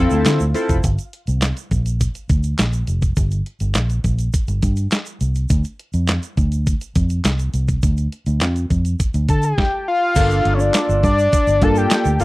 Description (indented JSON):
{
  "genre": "early-eighties boogie funk",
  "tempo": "103 BPM",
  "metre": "4/4",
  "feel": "straight",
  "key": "G dorian",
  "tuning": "A4 = 440 Hz",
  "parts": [
    { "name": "fat analog lead", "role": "melody", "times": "0.0-0.2, 9.3-12.2 s", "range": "C#5 to A5", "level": "-18 LUFS", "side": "left 1 dB", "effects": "tape echo" },
    { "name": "chorused polysynth", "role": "accompaniment", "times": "0.0-0.8, 10.2-12.2 s", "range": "Bb3 to A4", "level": "-20 LUFS", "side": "left 1 dB", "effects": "none" },
    { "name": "vintage muted fingered electric bass", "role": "bass", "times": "0.0-12.2 s", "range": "F1 to D3", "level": "-18 LUFS", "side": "equal", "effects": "none" },
    { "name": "egg shaker", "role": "percussion", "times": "0.1-12.2 s", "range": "none", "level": "-36 LUFS", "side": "right 10 dB", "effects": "none" },
    { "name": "detuned 8-bit digital drum machine", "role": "drums", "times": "0.3-12.2 s", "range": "crash cymbal, handclaps, hi-hat, kick drum, snare drum", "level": "-19 LUFS", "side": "equal", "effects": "none" }
  ],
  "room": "little or no reverb",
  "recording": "dry, close 1970s-style studio recording",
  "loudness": "-16 LUFS",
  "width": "side -20 dB against mid",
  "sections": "0.8-10.2 A section; 10.2-12.2 B section",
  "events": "none",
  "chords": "0.0 Dm9; 0.8 Gm; 5.5 Dm7; 10.2 Gm9"
}